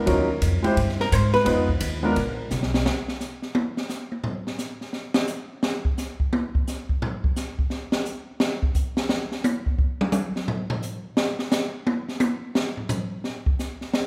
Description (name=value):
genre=jazz, small-group swing and bop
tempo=173 BPM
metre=4/4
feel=swing 64% on 8ths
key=unclear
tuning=A4 = 441 Hz
part: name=warm concert grand piano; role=accompaniment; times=0.0-2.2 s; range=Gb3 to C5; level=-26 LUFS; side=equal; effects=none
part: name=upright bass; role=bass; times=0.1-2.9 s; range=Bb1 to Ab2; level=-27 LUFS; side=equal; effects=none
part: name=open jazz drum kit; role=drums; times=0.1-14.0 s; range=hi-hat, kick drum, ride cymbal, snare drum, toms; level=-27 LUFS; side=equal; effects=none
part: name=archtop guitar, miked and amplified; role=melody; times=1.0-1.7 s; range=Bb4 to C5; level=-25 LUFS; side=equal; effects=none
room=moderate recital hall reverb, RT60 1.4 s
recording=recorded in a church or concert hall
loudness=-25 LUFS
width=mono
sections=0.0-2.9 A section; 2.9-13.9 A section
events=hollow-body jazz guitar solo 0.0-2.9; drum fill 2.5-2.9; drum solo 2.9-14.1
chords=0.1 Ebm7; 0.8 Gsus4; 1.5 Fm7b5; 2.2 N.C.